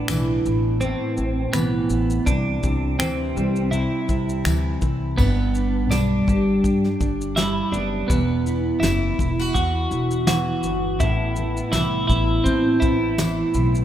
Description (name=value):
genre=acoustic pop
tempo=82 BPM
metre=4/4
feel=swing 55% on 16ths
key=unclear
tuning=A4 = 440 Hz
part: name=twelve-string electric guitar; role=second line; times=0.0-13.8 s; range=B3 to F#4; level=-25 LUFS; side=right 2 dB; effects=none
part: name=fingerpicked steel-string acoustic guitar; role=accompaniment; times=0.0-13.8 s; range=E2 to G4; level=-23 LUFS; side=equal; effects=double-tracked left and right
part: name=upright bass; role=bass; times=0.0-13.8 s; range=E1 to A2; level=-24 LUFS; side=equal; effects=none
part: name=soft brush drum kit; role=drums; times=0.1-13.8 s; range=crash cymbal, finger snaps, kick drum, shaker, snare drum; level=-25 LUFS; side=equal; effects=none
part: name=tambourine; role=percussion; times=0.1-13.4 s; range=none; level=-38 LUFS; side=left 6 dB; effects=none
room=moderate plate reverb, RT60 2.5 s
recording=rough home demo mix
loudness=-19 LUFS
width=side -11 dB against mid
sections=0.0-5.2 A section; 5.2-13.8 B section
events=none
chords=0.0 Amadd9; 2.3 C; 5.2 G; 8.1 Esus2; 11.0 Amadd9